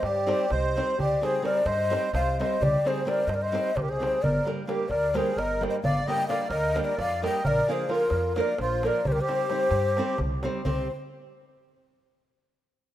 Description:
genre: balkan folk, Balkan wedding band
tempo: 261 BPM (eighths)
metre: 7/8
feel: straight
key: C minor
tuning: A4 = 441 Hz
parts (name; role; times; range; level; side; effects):
- breathy mellow ney; melody; 0.0-10.9 s; Bb4 to G5; -27 LUFS; left 2 dB; none
- accordion; second line; 0.0-10.9 s; F4 to Eb5; -32 LUFS; right 4 dB; light tremolo tuning
- upright bass; bass; 0.0-10.9 s; G1 to G2; -31 LUFS; equal; none
- darbuka; percussion; 0.0-10.9 s; none; -32 LUFS; equal; none
- flamenco guitar; accompaniment; 0.3-10.9 s; F3 to C5; -31 LUFS; right 2 dB; none
room: light reverb, small room ambience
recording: rough home demo mix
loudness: -23 LUFS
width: side -12 dB against mid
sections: 0.0-10.7 A section; 10.7-12.2 B section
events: none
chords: 0.0 Cm; 4.2 Gm; 7.5 Bb; 9.1 Cm

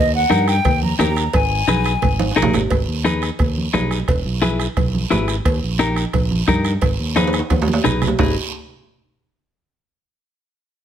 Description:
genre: latin, cumbia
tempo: 175 BPM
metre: 4/4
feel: straight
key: G# harmonic minor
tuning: A4 = 440 Hz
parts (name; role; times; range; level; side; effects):
- breathy mellow jazz flute; melody; 0.0-2.4 s; D#5 to A#5; -20 LUFS; left 2 dB; none
- fingered electric bass; bass; 0.0-8.4 s; E1 to G2; -21 LUFS; right 1 dB; none
- semi-hollow electric guitar; accompaniment; 0.3-8.4 s; D#4 to B4; -21 LUFS; left 4 dB; none
- bombo; percussion; 0.3-8.3 s; none; -22 LUFS; equal; none
- congas; percussion; 0.3-8.3 s; none; -25 LUFS; right 4 dB; none
- guiro; percussion; 0.3-8.3 s; none; -30 LUFS; right 8 dB; none
- cowbell and timbales; percussion; 0.6-8.3 s; none; -24 LUFS; right 4 dB; none
room: light reverb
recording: none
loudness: -16 LUFS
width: side -10 dB against mid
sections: 0.0-2.7 A section; 2.7-8.2 B section; 8.2-9.6 C section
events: drum fill 2.2-2.7, 7.2-8.2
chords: 0.0 D#; 1.3 G#m; 4.1 E; 5.5 D#; 6.8 G#m

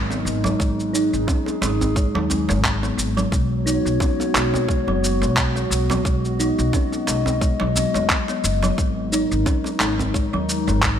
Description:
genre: organic downtempo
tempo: 88 BPM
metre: 4/4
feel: swing 56% on 16ths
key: G# minor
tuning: A4 = 442 Hz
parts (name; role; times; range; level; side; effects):
- warbly tape-like pad; sustained chords; 0.0-11.0 s; G#3 to D#5; -26 LUFS; left 1 dB; chorus, built-in reverb, sidechain pumping
- upright bass; bass; 0.0-11.0 s; F#1 to D#2; -24 LUFS; equal; none
- kalimba; arpeggios; 0.1-10.8 s; F#3 to D#4; -24 LUFS; left 1 dB; low-pass filter, ping-pong delay
- electronic shaker and handclaps; drums; 0.1-11.0 s; none; -25 LUFS; equal; small room reverb
- djembe; percussion; 0.1-10.8 s; none; -30 LUFS; right 3 dB; none
- electronic kick drum; drums; 0.6-11.0 s; none; -22 LUFS; equal; small room reverb
room: light reverb, studio reverb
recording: none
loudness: -18 LUFS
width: side -9 dB against mid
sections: 0.0-11.0 A section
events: filter sweep on kalimba 0.0-11.0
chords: 0.0 G#7(no3); 3.3 B; 8.8 G#5

